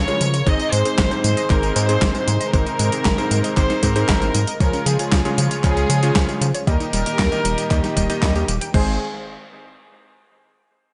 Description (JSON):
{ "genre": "italo disco", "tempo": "116 BPM", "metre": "4/4", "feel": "straight", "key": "Ab major", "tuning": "A4 = 443 Hz", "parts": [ { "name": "warm chamber violin section", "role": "melody", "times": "0.0-9.0 s", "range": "Ab4 to Eb5", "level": "-27 LUFS", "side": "equal", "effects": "delay" }, { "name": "muted studio string section", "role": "sustained chords", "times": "0.0-9.0 s", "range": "Bb2 to C5", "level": "-32 LUFS", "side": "equal", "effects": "none" }, { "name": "analog pluck", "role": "arpeggios", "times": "0.0-9.0 s", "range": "F3 to G5", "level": "-31 LUFS", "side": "equal", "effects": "chorus, delay" }, { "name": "clear electric grand piano", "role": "stabs", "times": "0.0-8.9 s", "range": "Ab2 to Eb5", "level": "-27 LUFS", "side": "equal", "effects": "delay" }, { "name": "round analog bass", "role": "bass", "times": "0.0-9.0 s", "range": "Eb1 to Db3", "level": "-24 LUFS", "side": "equal", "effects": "none" }, { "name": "clean 12-bit digital drum machine", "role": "drums", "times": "0.1-8.8 s", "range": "crash cymbal, handclaps, hi-hat, snare drum, tambourine", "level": "-27 LUFS", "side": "equal", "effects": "overdrive, gated reverb" }, { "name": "electronic kick drum", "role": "drums", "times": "0.5-8.8 s", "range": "none", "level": "-22 LUFS", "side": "equal", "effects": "overdrive" } ], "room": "light reverb, digital ambience", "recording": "nothing above 10.8 kHz", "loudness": "-19 LUFS", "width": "mono", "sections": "0.0-8.7 A section; 8.7-10.8 B section", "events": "none", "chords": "0.5 Ab; 4.6 Db; 6.7 Eb; 8.7 Ab" }